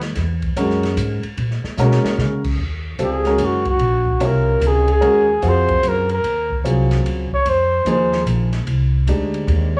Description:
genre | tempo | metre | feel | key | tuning
modal jazz | 148 BPM | 3/4 | swing 65% on 8ths | Eb dorian | A4 = 440 Hz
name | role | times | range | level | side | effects
upright bass | bass | 0.0-9.8 s | Gb1 to Db3 | -22 LUFS | equal | none
open jazz drum kit | drums | 0.0-9.6 s | crash cymbal, hi-hat, kick drum, ride cymbal, snare drum | -30 LUFS | equal | cassette tape
warm baby grand piano | accompaniment | 0.6-9.7 s | C3 to Db5 | -24 LUFS | equal | cassette tape, plate reverb
breathy trumpet | melody | 3.0-9.8 s | Gb4 to Db5 | -20 LUFS | equal | cassette tape, plate reverb
room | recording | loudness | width
moderate booth ambience, RT60 0.2 s | home recording on cassette, small room ambience | -18 LUFS | mono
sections
0.0-2.6 A section; 2.6-9.8 B section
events
drum fill 1.8-2.2; trumpet solo 2.6-9.8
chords
0.0 Dbm; 1.4 Abm11/Bb; 2.6 Ebm9; 7.5 Fm9

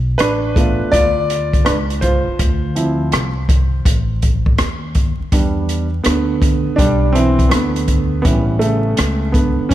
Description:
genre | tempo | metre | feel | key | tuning
hip hop, jazz-hop | 82 BPM | 4/4 | swing 65% on 16ths | unclear | A4 = 440 Hz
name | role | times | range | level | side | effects
upright bass | bass | 0.0-9.7 s | A1 to E2 | -19 LUFS | equal | none
dark concert grand piano | accompaniment | 0.2-9.7 s | C#3 to D5 | -17 LUFS | right 1 dB | none
open jazz drum kit | drums | 0.2-9.7 s | hi-hat, kick drum, rim click | -17 LUFS | equal | none
room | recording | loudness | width
light reverb, small room ambience | vinyl crackle | -13 LUFS | side -13 dB against mid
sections
0.0-5.3 A section; 5.3-9.7 A section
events
grand piano solo 0.0-5.3, 5.3-9.7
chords
0.0 Bm9b5/A; 2.4 Dm7; 5.3 Em7; 8.2 A7

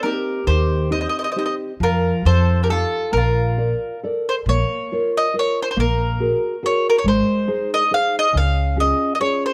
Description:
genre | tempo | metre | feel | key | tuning
italian folk, Italian serenade | 138 BPM | 3/4 | swing 55% on 8ths | Bb major, Bb minor from 4.5 s | A4 = 440 Hz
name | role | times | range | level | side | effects
mandolin | melody | 0.0-9.5 s | A4 to F5 | -23 LUFS | equal | none
mandolin | second line | 0.0-4.0 s | F4 to C5 | -30 LUFS | equal | none
nylon-string guitar | accompaniment | 0.0-9.5 s | Db3 to D5 | -25 LUFS | equal | none
upright bass | bass | 0.5-8.9 s | Ab1 to F2 | -22 LUFS | equal | none
room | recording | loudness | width
light reverb | close, detailed microphones | -19 LUFS | mono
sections
0.0-4.5 A section; 4.5-9.5 B section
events
none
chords
0.5 Eb6; 1.8 Fsus4; 2.3 F7; 3.1 Bbmaj7; 4.5 Bbm; 5.8 Gbadd9/Bb; 7.1 Ab; 8.3 Db

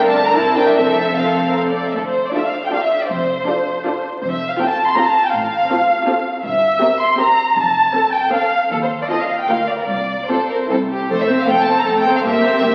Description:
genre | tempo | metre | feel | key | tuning
quick classical-period movement for string orchestra | 146-164 BPM | 3/4 | rubato | D minor, F major from 6.5 s | A4 = 439 Hz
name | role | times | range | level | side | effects
warm studio violin section | second line | 0.0-12.7 s | F4 to C6 | -20 LUFS | equal | none
rich studio viola section | accompaniment | 0.0-12.7 s | A3 to C5 | -22 LUFS | equal | none
clear studio cello section | bass | 0.0-12.7 s | C2 to C3 | -32 LUFS | equal | none
clear studio double bass section | bass | 0.0-12.7 s | F1 to Eb2 | -35 LUFS | equal | none
rich studio violin section | melody | 0.1-12.7 s | G4 to Bb5 | -23 LUFS | equal | none
room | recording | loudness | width
wet concert hall reverb, RT60 2.0 s | very old 78 rpm record, vinyl crackle | -17 LUFS | mono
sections
0.0-2.0 A section; 2.0-11.1 B section; 11.1-12.7 A section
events
none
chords
0.4 C7; 0.8 F; 2.0 Dm; 3.1 Dm/F; 4.2 F; 5.3 F/A; 6.5 C7/G; 7.6 F; 8.7 F7/Eb; 9.5 Bb/D; 9.9 F/C; 10.7 C; 11.1 F; 12.2 C7/G

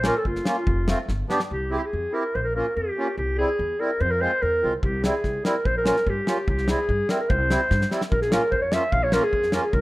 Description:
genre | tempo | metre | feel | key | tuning
klezmer | 145 BPM | 2/4 | straight | unclear | A4 = 439 Hz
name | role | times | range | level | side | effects
warm clarinet | melody | 0.0-9.8 s | F4 to F5 | -24 LUFS | equal | none
accordion | accompaniment | 0.0-9.6 s | G3 to G4 | -28 LUFS | right 1 dB | none
upright bass | bass | 0.0-9.8 s | F1 to G2 | -27 LUFS | equal | none
damped 70s drum kit | drums | 0.0-1.5, 4.8-9.8 s | kick drum, snare drum | -26 LUFS | equal | none
room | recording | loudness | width
light reverb, studio ambience | rough home demo mix | -21 LUFS | side -19 dB against mid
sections
0.0-1.5 A section; 1.5-8.1 B section; 8.1-9.8 C section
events
speeding up 0.0-9.8; drum fill 1.1-1.5, 7.7-8.1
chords
0.0 Bbm; 0.7 F; 1.1 G; 1.5 C; 2.3 Bbm; 3.2 C; 4.0 Fm; 4.8 C; 5.7 Bbm; 6.5 C; 8.1 Bbm

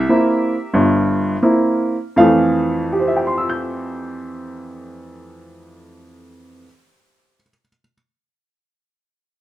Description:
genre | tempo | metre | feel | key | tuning
solo jazz | 82 BPM | 4/4 | swing 68% on 8ths, rubato | F major | A4 = 439 Hz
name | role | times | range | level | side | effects
clear upright piano | solo | 0.0-7.9 s | G1 to G6 | -15 LUFS | equal | none
room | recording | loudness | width
light reverb | none | -15 LUFS | side -14 dB against mid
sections
0.0-2.2 A section; 2.2-8.1 B section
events
slowing down 0.0-2.2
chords
0.0 C7; 2.2 Fmaj7

